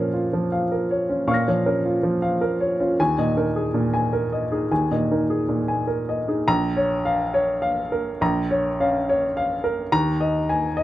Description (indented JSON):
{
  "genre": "neoclassical minimalist piano",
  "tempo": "104 BPM",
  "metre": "3/4",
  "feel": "rubato",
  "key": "Bb minor",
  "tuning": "A4 = 441 Hz",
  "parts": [
    { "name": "warm upright piano", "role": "solo", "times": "0.0-10.8 s", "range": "Bb1 to Bb6", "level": "-20 LUFS", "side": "equal", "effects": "none" }
  ],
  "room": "light reverb",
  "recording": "dry, close 1970s-style studio recording",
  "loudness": "-20 LUFS",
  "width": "side -14 dB against mid",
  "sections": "0.0-6.5 A section; 6.5-10.8 B section",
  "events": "none",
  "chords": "0.0 Bbm; 3.0 Ebsus4; 6.5 Bbm; 9.9 Ebsus4"
}